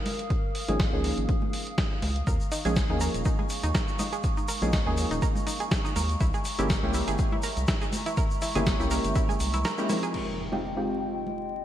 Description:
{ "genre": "deep house", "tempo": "122 BPM", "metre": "4/4", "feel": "swing 55% on 16ths", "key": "F minor", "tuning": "A4 = 440 Hz", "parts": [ { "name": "warbly tape-like pad", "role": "sustained chords", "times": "0.0-11.6 s", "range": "Ab3 to Eb6", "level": "-36 LUFS", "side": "equal", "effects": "chorus, built-in reverb, sidechain pumping" }, { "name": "deep mellow chord stab", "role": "stabs", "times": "0.0-11.6 s", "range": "F3 to Bb4", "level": "-31 LUFS", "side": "equal", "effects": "chorus, sidechain pumping, digital delay" }, { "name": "dusty soul sampler-style drum kit", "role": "drums", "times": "0.1-10.2 s", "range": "crash cymbal, hi-hat, snare drum", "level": "-33 LUFS", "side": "equal", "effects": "gated reverb" }, { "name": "congas", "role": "percussion", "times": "0.1-11.4 s", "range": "none", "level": "-38 LUFS", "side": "right 1 dB", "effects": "none" }, { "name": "electronic kick drum", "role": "drums", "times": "0.3-9.3 s", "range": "none", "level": "-28 LUFS", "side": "equal", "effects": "none" }, { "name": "round analog bass", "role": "bass", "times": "0.7-9.6 s", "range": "Eb1 to Eb2", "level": "-29 LUFS", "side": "equal", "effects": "sidechain pumping" }, { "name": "analog pluck", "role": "arpeggios", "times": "2.3-10.1 s", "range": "Eb4 to Bb4", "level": "-34 LUFS", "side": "right 2 dB", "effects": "chorus, sidechain pumping, digital delay" }, { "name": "tube shaker", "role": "percussion", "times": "2.3-10.1 s", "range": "none", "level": "-41 LUFS", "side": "left 3 dB", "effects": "none" }, { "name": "impact", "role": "sound effects", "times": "10.1-11.6 s", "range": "none", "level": "-40 LUFS", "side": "equal", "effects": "none" } ], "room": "moderate lush hall reverb, RT60 2.3 s", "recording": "bright 1980s-style digital production, vinyl crackle", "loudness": "-25 LUFS", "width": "side -11 dB against mid", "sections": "0.0-10.1 A section; 10.1-11.6 B section", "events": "kick drops out 9.6-10.1; impact 10.1-11.6", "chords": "0.0 Db69; 2.3 Eb9sus4; 6.2 C7b9b13; 10.1 Fm9", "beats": "| 0.30 0.80 1.29 1.78 | 2.27 2.76 3.25 3.75 | 4.24 4.73 5.22 5.71 | 6.21 6.70 7.19 7.68 | 8.17 8.66 9.16 9.65 | 10.14 10.63 11.12 11.62" }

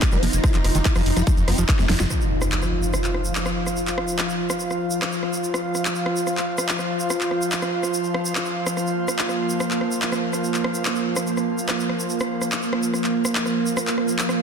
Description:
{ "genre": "psychedelic trance", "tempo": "144 BPM", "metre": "4/4", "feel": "straight", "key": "unclear", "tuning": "A4 = 440 Hz", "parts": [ { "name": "swarming rave lead", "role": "melody", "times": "0.0-2.1 s", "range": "F3 to C5", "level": "-30 LUFS", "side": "equal", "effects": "chorus, phaser, sidechain pumping, ping-pong delay" }, { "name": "evolving wavetable pad", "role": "sustained chords", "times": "0.0-14.4 s", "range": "F3 to F4", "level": "-25 LUFS", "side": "right 1 dB", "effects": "chorus, built-in reverb, sidechain pumping" }, { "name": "screaming distorted acid line", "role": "riff", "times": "0.0-2.0 s", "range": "Eb3 to G4", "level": "-29 LUFS", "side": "moving between left 4 dB and right 3 dB", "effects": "distortion, chorus, auto-pan, sidechain pumping, tape echo" }, { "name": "big-room dance drum kit", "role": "drums", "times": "0.0-14.4 s", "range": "handclaps, hi-hat, rim click, snare drum", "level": "-26 LUFS", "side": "equal", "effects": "overdrive, studio reverb" }, { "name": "electronic kick drum", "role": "drums", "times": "0.0-1.8 s", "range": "none", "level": "-20 LUFS", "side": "equal", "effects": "overdrive, studio reverb" }, { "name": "egg shaker", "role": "percussion", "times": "0.0-14.4 s", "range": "none", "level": "-32 LUFS", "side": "right 2 dB", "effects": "none" }, { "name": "airy breathy pad", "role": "texture", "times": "0.0-14.4 s", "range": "F4 to Bb5", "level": "-29 LUFS", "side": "right 3 dB", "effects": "chorus, sidechain pumping" }, { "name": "fat analog bass", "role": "bass", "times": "0.1-2.1 s", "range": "F1", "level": "-22 LUFS", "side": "equal", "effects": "none" }, { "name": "impact", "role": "sound effects", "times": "2.1-3.8 s", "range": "none", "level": "-26 LUFS", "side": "equal", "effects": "none" } ], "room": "moderate lush hall reverb, RT60 1.6 s", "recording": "dense, heavily limited modern master, faint mains hum", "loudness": "-20 LUFS", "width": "side -6 dB against mid", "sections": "0.0-2.1 A section; 2.1-14.4 B section", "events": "drop 0.0-2.1; drum fill 1.8-2.1; impact 2.1-3.8", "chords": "0.0 F5", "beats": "0.02 | 0.44 0.85 1.27 1.69 | 2.10 2.52 2.94 3.35 | 3.77 4.19 4.60 5.02 | 5.44 5.85 6.27 6.69 | 7.10 7.52 7.94 8.35 | 8.77 9.19 9.60 10.02 | 10.44 10.85 11.27 11.69 | 12.10 12.52 12.94 13.35 | 13.77 14.19" }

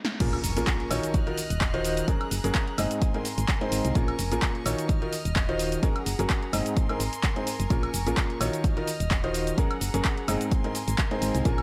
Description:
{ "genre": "piano house", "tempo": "128 BPM", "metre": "4/4", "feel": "swing 55% on 16ths", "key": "Bb minor", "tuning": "A4 = 441 Hz", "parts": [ { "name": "punchy analog drum machine", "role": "drums", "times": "0.0-11.6 s", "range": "cabasa, crash cymbal, handclaps, hi-hat, snare drum, woodblock", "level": "-34 LUFS", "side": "equal", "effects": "none" }, { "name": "rich chamber string section", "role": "sustained chords", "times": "0.2-11.6 s", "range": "Ab4 to Gb6", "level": "-39 LUFS", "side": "equal", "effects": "sidechain pumping" }, { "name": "clear grand piano", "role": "riff", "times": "0.2-11.6 s", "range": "Ab2 to Eb5", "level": "-32 LUFS", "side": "equal", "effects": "sidechain pumping, digital delay" }, { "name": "solid FM bass", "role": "bass", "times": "0.2-11.6 s", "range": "Eb1 to C2", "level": "-32 LUFS", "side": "equal", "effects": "sidechain pumping" }, { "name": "electronic kick drum", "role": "drums", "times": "0.2-11.6 s", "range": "none", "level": "-28 LUFS", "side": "equal", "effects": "none" }, { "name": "impact", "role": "sound effects", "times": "0.2-2.1 s", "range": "none", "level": "-41 LUFS", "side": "equal", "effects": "none" } ], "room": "little or no reverb", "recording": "none", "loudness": "-27 LUFS", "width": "mono", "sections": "0.2-11.6 A section", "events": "drum fill 0.0; stop 0.0; band accent 0.0; drop 0.2-11.6; impact 0.2-2.1", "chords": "0.2 Bbm7; 1.1 Ebmadd9; 2.1 Gbadd9; 3.0 Abadd9; 4.0 Bbm7; 4.9 Ebmadd9; 5.8 Gbadd9; 6.8 Abadd9; 7.7 Bbm7; 8.6 Ebmadd9; 9.6 Gbadd9; 10.5 Abadd9", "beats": "| 0.20 0.67 1.14 1.61 | 2.08 2.55 3.02 3.48 | 3.95 4.42 4.89 5.36 | 5.83 6.30 6.77 7.24 | 7.70 8.17 8.64 9.11 | 9.58 10.05 10.52 10.98 | 11.45" }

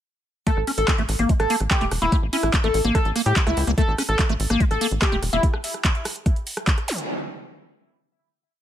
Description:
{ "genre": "psychedelic trance", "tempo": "145 BPM", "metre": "4/4", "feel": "straight", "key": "unclear", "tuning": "A4 = 440 Hz", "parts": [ { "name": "overdriven synth lead", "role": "melody", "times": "0.5-5.4 s", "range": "E4 to A4", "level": "-25 LUFS", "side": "left 1 dB", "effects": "phaser, cassette tape, sidechain pumping, tape echo" }, { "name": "liquid acid bass", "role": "riff", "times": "0.5-5.4 s", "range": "G3 to C#4", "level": "-26 LUFS", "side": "moving between left 5 dB and right 3 dB", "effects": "chorus, auto-pan, sidechain pumping, ping-pong delay" }, { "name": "big-room dance drum kit", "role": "drums", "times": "0.5-7.1 s", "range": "handclaps, hi-hat, rim click", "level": "-26 LUFS", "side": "right 1 dB", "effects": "overdrive" }, { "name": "electronic kick drum", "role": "drums", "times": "0.5-6.8 s", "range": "none", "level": "-21 LUFS", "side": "equal", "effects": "overdrive" }, { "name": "tight sequencer bass", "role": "bass", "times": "0.6-5.4 s", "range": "E1 to A2", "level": "-24 LUFS", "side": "equal", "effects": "none" }, { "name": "zap", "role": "sound effects", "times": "6.9-7.0 s", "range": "none", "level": "-28 LUFS", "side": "right 1 dB", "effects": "none" } ], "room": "little or no reverb", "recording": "none", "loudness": "-19 LUFS", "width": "side -11 dB against mid", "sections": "0.5-7.1 drop", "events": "drop 0.5-7.1", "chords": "0.5 A5", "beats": "| 0.47 0.88 1.29 1.71 | 2.12 2.54 2.95 3.36 | 3.78 4.19 4.61 5.02 | 5.43 5.85 6.26 6.67" }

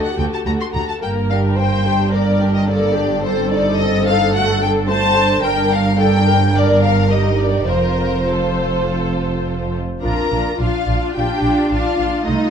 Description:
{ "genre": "quick classical-period movement for string orchestra", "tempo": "108 BPM", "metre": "4/4", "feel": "rubato", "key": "G minor, Bb major from 5.4 s", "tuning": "A4 = 441 Hz", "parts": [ { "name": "warm symphonic violin section", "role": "melody", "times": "0.0-12.5 s", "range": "A4 to C6", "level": "-21 LUFS", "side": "left 4 dB", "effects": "none" }, { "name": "dark symphonic violin section", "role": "second line", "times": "0.0-12.5 s", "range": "A3 to C5", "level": "-23 LUFS", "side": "left 2 dB", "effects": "none" }, { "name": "rich symphonic viola section", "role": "accompaniment", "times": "0.0-12.5 s", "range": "A3 to C5", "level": "-23 LUFS", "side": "right 1 dB", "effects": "none" }, { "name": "rich studio double bass section", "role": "bass", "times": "0.2-12.3 s", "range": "F1 to D2", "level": "-21 LUFS", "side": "right 3 dB", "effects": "none" }, { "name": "rich symphonic cello section", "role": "bass", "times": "0.2-12.5 s", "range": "D2 to Eb4", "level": "-21 LUFS", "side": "right 2 dB", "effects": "none" } ], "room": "moderate large studio reverb, RT60 1.2 s", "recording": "dark, warm production", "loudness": "-14 LUFS", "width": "side -7 dB against mid", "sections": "0.0-10.0 A section; 10.0-12.5 B section", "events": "none", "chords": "0.0 D; 1.0 Gm; 3.2 Adim/G; 4.3 D/G; 5.4 Gm; 7.7 F; 10.0 Bb", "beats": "0.46 | 1.03 1.59 2.14 2.69 | 3.24 3.79 4.34 4.89 | 5.43 5.98 6.54 7.11 | 7.69 8.28 8.87 9.45 | 10.04 10.60 11.16 11.72 | 12.27" }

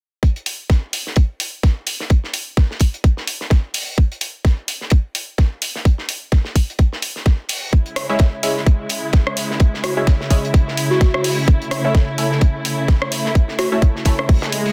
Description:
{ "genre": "bass house", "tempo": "128 BPM", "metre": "4/4", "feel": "swing 57% on 16ths", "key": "unclear", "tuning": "A4 = 440 Hz", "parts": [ { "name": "cloth-damped thuddy drum kit", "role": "drums", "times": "0.2-14.7 s", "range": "hi-hat, snare drum", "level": "-32 LUFS", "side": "equal", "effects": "sidechain pumping on hats, high-pass filter on hats, high-pass filter on snare, high-pass filter on room" }, { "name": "electronic kick drum", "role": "drums", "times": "0.2-14.4 s", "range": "none", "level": "-15 LUFS", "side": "equal", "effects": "none" }, { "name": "house drum kit", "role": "drums", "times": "0.5-14.6 s", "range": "hi-hat, rim click", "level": "-26 LUFS", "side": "equal", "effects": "soft clipping on snare" }, { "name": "muted symphonic string section", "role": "sustained chords", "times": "7.7-14.7 s", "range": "C#3 to E4", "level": "-26 LUFS", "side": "equal", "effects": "sidechain pumping" }, { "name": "band-passed chord stab", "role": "stabs", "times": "8.1-14.1 s", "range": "G#3 to E4", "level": "-26 LUFS", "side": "equal", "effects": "chorus, phaser, sidechain pumping, dub echo" }, { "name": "plucky unison lead", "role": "melody", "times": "9.8-13.8 s", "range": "F#4", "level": "-25 LUFS", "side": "equal", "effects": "vintage 12-bit sampler grit, dub echo" }, { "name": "swell", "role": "sound effects", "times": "14.5-14.7 s", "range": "none", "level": "-24 LUFS", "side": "equal", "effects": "none" } ], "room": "studio reverb", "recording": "dense, heavily limited modern master", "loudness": "-18 LUFS", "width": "mono", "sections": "0.2-14.7 A section", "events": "swell 14.5", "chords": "0.2 N.C.; 7.7 C#m; 11.5 A", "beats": "| 0.23 0.70 1.17 1.63 | 2.10 2.57 3.04 3.51 | 3.98 4.45 4.92 5.38 | 5.85 6.32 6.79 7.26 | 7.73 8.20 8.66 9.13 | 9.60 10.07 10.54 11.01 | 11.48 11.95 12.41 12.88 | 13.35 13.82 14.29" }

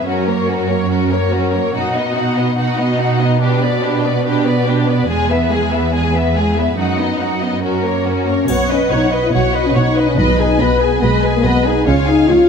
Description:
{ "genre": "cinematic, heroic adventure film score", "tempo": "142 BPM", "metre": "4/4", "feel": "straight", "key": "B major", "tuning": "A4 = 440 Hz", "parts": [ { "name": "warm symphonic violin section", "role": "melody", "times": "0.0-12.5 s", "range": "A#4 to B5", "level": "-22 LUFS", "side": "left 5 dB", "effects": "none" }, { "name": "rich symphonic violin section", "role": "second line", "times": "0.0-12.5 s", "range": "D#4 to E#5", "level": "-22 LUFS", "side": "left 3 dB", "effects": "none" }, { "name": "rich symphonic viola section", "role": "accompaniment", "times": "0.0-12.5 s", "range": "G#3 to C#5", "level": "-20 LUFS", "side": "right 2 dB", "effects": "none" }, { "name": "rich symphonic cello section", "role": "bass", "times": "0.0-12.5 s", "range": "E2 to C#3", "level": "-18 LUFS", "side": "right 3 dB", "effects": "none" }, { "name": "warm French horn section", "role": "sustained chords", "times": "8.3-12.5 s", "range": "G#3 to F#4", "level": "-15 LUFS", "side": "left 3 dB", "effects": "none" }, { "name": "rich symphonic double bass section", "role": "bass", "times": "8.5-12.5 s", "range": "B1 to C#2", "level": "-19 LUFS", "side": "right 2 dB", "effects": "none" }, { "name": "triangle", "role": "percussion", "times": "8.5-9.3 s", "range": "none", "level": "-34 LUFS", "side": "left 4 dB", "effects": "none" }, { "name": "timpani", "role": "percussion", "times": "10.2-10.8 s", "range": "B2", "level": "-23 LUFS", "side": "equal", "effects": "none" } ], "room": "moderate scoring stage reverb, RT60 1.5 s", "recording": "none", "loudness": "-13 LUFS", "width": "side -6 dB against mid", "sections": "0.0-8.5 A section; 8.5-12.5 B section", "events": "build-up 0.0-8.5", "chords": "0.1 F#; 1.7 B; 3.4 G/B; 5.1 E; 6.8 B/F#; 7.6 F#; 8.5 Badd9; 10.2 G#m/B; 11.9 C#", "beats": "| 0.06 0.48 0.90 1.32 | 1.74 2.15 2.57 2.99 | 3.41 3.83 4.25 4.67 | 5.09 5.51 5.93 6.36 | 6.78 7.20 7.63 8.06 | 8.49 8.91 9.34 9.76 | 10.18 10.61 11.03 11.45 | 11.87 12.30" }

